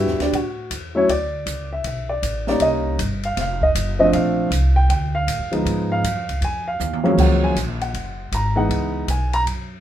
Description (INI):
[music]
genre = jazz piano trio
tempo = 158 BPM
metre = 4/4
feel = swing 65% on 8ths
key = unclear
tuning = A4 = 440 Hz
[part]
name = dark baby grand piano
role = melody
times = 0.0-9.4 s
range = Gb2 to A#5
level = -20 LUFS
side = equal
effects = none
[part]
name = upright bass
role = bass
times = 0.0-9.8 s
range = F1 to A2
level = -23 LUFS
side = equal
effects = none
[part]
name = open jazz drum kit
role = drums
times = 0.1-9.6 s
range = crash cymbal, hi-hat, kick drum, ride cymbal, snare drum, toms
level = -27 LUFS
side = right 1 dB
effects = none
[sound]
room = moderate club reverb, RT60 0.6 s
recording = minimal, uncompressed stereo recording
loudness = -18 LUFS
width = side -11 dB against mid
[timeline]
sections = 0.0-7.2 A section; 7.2-9.8 A section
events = grand piano solo 0.0-9.8; drum fill 6.8-7.2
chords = 0.3 A; 1.1 D5; 2.6 Cm7; 3.4 F7(no3); 4.1 Bbmaj9; 5.7 Db9 (rootless); 7.2 F#maj9; 8.7 C#m7